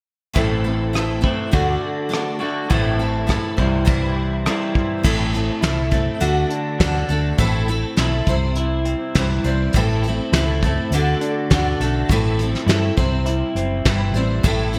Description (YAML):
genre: folk rock and heartland rock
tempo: 102 BPM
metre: 4/4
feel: straight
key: A dorian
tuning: A4 = 440 Hz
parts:
  - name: picked steel-string acoustic guitar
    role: accompaniment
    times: 0.3-14.8 s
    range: A2 to C5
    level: -25 LUFS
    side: equal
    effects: ensemble chorus
  - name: electric guitar through a small old amp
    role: riff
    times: 0.3-14.8 s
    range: A2 to F#4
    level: -27 LUFS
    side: equal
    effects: lush chorus
  - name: hollow-body short-scale fingered electric bass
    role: bass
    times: 0.4-14.8 s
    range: F#1 to G2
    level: -24 LUFS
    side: equal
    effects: none
  - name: soft brush drum kit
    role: drums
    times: 0.4-14.8 s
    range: crash cymbal, hi-hat, kick drum, rim click, snare drum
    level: -24 LUFS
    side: equal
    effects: none
room: moderate lush hall reverb, RT60 1.7 s, studio reverb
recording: bright 1980s-style digital production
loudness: -20 LUFS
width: mono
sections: 0.4-5.1 A section; 5.1-14.8 B section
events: none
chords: 0.4 Am; 1.5 D; 2.7 Am; 3.6 C; 5.1 Am; 6.2 D; 7.4 Am; 8.3 C; 9.7 Am; 10.9 D; 12.1 Am; 13.0 C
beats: | 0.36 0.95 1.53 2.12 | 2.71 3.29 3.88 4.46 | 5.05 5.64 6.22 6.81 | 7.40 7.99 8.57 9.16 | 9.75 10.34 10.92 11.51 | 12.10 12.69 13.27 13.86 | 14.45